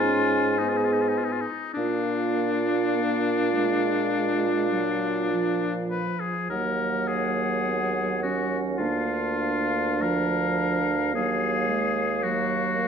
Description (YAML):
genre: classical, slow romantic movement for wind quintet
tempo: 48-56 BPM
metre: 4/4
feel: rubato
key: unclear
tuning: A4 = 442 Hz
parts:
  - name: silver concert flute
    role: melody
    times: 0.0-12.9 s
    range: F5 to Ab5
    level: -33 LUFS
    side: left 7 dB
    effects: none
  - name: warm oboe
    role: second line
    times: 0.0-12.9 s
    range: D4 to Cb5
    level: -27 LUFS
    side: left 5 dB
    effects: none
  - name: clear clarinet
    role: accompaniment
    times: 0.0-12.9 s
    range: Gb3 to Ab4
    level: -30 LUFS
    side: right 9 dB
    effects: none
  - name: mellow French horn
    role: accompaniment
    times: 0.0-12.9 s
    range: F3 to Db4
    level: -32 LUFS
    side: equal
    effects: none
  - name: mellow bassoon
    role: bass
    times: 0.0-12.9 s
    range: D2 to Bb2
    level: -28 LUFS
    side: right 2 dB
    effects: none
room: wet recital hall reverb, RT60 1.3 s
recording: dark, warm production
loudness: -23 LUFS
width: side -7 dB against mid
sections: 0.0-12.9 A section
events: none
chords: 0.0 Abm; 1.8 Bb; 6.5 Ebm; 8.8 Bb/D; 11.1 Ebm